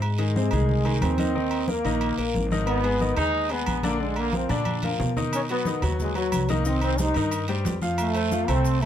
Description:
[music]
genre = latin, salsa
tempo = 181 BPM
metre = 4/4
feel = straight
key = unclear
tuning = A4 = 440 Hz
[part]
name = bright trombone section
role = melody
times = 0.0-8.9 s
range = F#3 to Eb4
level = -26 LUFS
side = equal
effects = none
[part]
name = upright bass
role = bass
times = 0.0-8.9 s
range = Ab1 to Cb3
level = -27 LUFS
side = right 1 dB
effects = none
[part]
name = agogo bells and timbales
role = percussion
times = 0.0-8.9 s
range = none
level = -34 LUFS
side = right 4 dB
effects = none
[part]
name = congas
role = percussion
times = 0.0-8.9 s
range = none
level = -32 LUFS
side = left 1 dB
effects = none
[part]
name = guiro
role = percussion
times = 0.0-8.9 s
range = none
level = -40 LUFS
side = right 6 dB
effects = none
[part]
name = bright grand piano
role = accompaniment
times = 0.2-8.9 s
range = C3 to F5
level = -28 LUFS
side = left 4 dB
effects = none
[part]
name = maracas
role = percussion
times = 5.3-8.9 s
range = none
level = -41 LUFS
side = left 3 dB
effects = none
[sound]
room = light reverb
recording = close, detailed microphones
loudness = -22 LUFS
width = side -10 dB against mid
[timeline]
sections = 0.0-8.9 A section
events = drum fill 4.5-5.3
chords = 0.0 Ab; 1.4 Eb5; 2.7 Abm; 4.0 Bb; 5.3 B; 6.7 Cm; 8.0 F

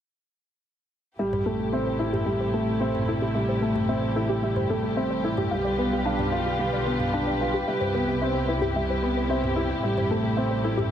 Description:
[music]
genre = piano and strings electronica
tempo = 111 BPM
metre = 4/4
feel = straight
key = A minor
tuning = A4 = 442 Hz
[part]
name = dark studio string section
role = sustained chords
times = 1.2-10.9 s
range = C3 to B4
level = -30 LUFS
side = right 1 dB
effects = none
[part]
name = warbly dusty pluck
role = arpeggios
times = 1.2-10.9 s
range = G4 to B5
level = -33 LUFS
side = left 1 dB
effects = chorus, digital delay
[part]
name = warm upright piano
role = riff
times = 1.2-10.9 s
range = G3 to F4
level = -26 LUFS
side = left 1 dB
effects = digital delay
[part]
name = muted symphonic double bass section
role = bass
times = 1.2-10.9 s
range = A1 to C2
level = -31 LUFS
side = equal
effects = none
[part]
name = electronic toms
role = drums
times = 1.3-10.9 s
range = none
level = -34 LUFS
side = right 1 dB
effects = none
[sound]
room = moderate echo chamber reverb, RT60 1.8 s, small room ambience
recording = none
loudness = -23 LUFS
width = side -9 dB against mid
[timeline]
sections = 1.2-10.9 A section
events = filter sweep on synth arpeggio sound 1.2-10.9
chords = 1.2 Am7; 5.5 G7/B; 7.7 Cmaj7; 9.8 Am7

